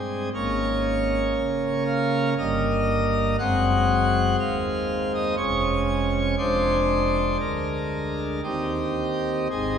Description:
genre	classical, chorale-style piece for pipe organ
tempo	59 BPM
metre	3/4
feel	rubato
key	unclear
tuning	A4 = 439 Hz
part	pipe organ, plenum	solo	0.0-9.8 s	F1 to Gb5	-21 LUFS	equal	none
room	wet church reverb, RT60 2.5 s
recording	minimal, uncompressed stereo recording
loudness	-21 LUFS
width	side -7 dB against mid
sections	0.0-9.8 A section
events	none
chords	0.3 Bbm7/Ab; 2.4 Eb/G; 3.4 Ab7/Gb; 5.4 Db/F; 6.4 Bb7/F; 8.4 Eb6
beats	| 0.33 1.36 2.38 | 3.39 4.39 5.39 | 6.39 7.40 8.44 | 9.51

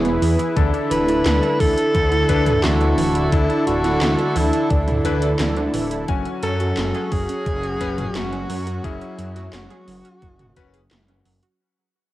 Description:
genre	synthwave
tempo	87 BPM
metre	4/4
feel	straight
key	F# minor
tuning	A4 = 439 Hz
part	breathy tenor saxophone	melody	0.0-10.9 s	C#4 to B4	-24 LUFS	equal	cassette tape, tape echo
part	warm analog pad	sustained chords	0.0-11.6 s	D3 to B4	-23 LUFS	equal	chorus, sidechain pumping, cassette tape
part	analog pluck	arpeggios	0.0-11.6 s	E3 to A4	-30 LUFS	right 7 dB	chorus, cassette tape, analog delay
part	wide detuned saw bass	bass	0.0-11.4 s	D1 to F#2	-23 LUFS	equal	chorus
part	80s electronic pad drums	drums	0.0-11.6 s	handclaps, hi-hat, snare drum, toms	-27 LUFS	equal	gated reverb on snare and toms
part	clear electric grand piano	stabs	0.6-10.8 s	C#4 to G#5	-29 LUFS	left 7 dB	cassette tape, analog delay, shimmer reverb
part	electronic kick drum	drums	0.6-10.7 s	none	-22 LUFS	equal	overdrive
room	light reverb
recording	home recording on cassette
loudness	-17 LUFS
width	side -15 dB against mid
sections	0.0-11.6 A section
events	fade-out 4.2-11.6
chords	0.0 E; 0.6 Dsus2; 6.1 F#sus2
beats	| 0.57 1.26 1.95 2.64 | 3.33 4.01 4.71 5.39 | 6.08 6.77 7.46 8.15 | 8.84 9.53 10.22 10.91

